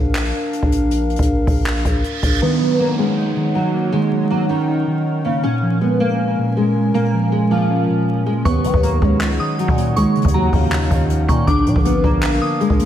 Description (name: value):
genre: hip hop, trap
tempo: 159 BPM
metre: 4/4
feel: half-time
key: Eb minor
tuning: A4 = 440 Hz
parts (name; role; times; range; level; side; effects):
- dark analog pad; sustained chords; 0.0-12.9 s; Db4 to Ab5; -25 LUFS; equal; chorus
- growling 808-style bass; bass; 0.0-2.4, 8.5-12.9 s; Ab1 to Eb3; -20 LUFS; equal; none
- jazz brush drum kit; drums; 0.2-2.3, 8.5-12.9 s; handclaps, hi-hat, kick drum; -19 LUFS; equal; none
- reverse cymbal and downlifter; sound effects; 1.9-5.4 s; none; -29 LUFS; right 4 dB; none
- nylon-string guitar; melody; 2.4-12.9 s; Db3 to D4; -20 LUFS; right 1 dB; analog chorus, diffuse ambient delay
- mellow electric guitar; accompaniment; 2.4-12.9 s; Bb2 to F5; -20 LUFS; equal; analog chorus
- soft synth bell; second line; 8.5-12.9 s; Bb5 to Eb6; -25 LUFS; equal; chorus, diffuse ambient delay
room: moderate lush hall reverb, RT60 1.7 s, studio ambience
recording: dreamy mix soaked in reverb, vinyl crackle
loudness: -15 LUFS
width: side -10 dB against mid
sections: 0.0-2.4 A section; 2.4-12.9 B section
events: break 0.0-2.4; reverse cymbal 1.9-2.4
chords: 0.0 Bb; 2.4 Ebm7; 5.4 Bbm7; 8.5 Ebm7; 11.5 Bb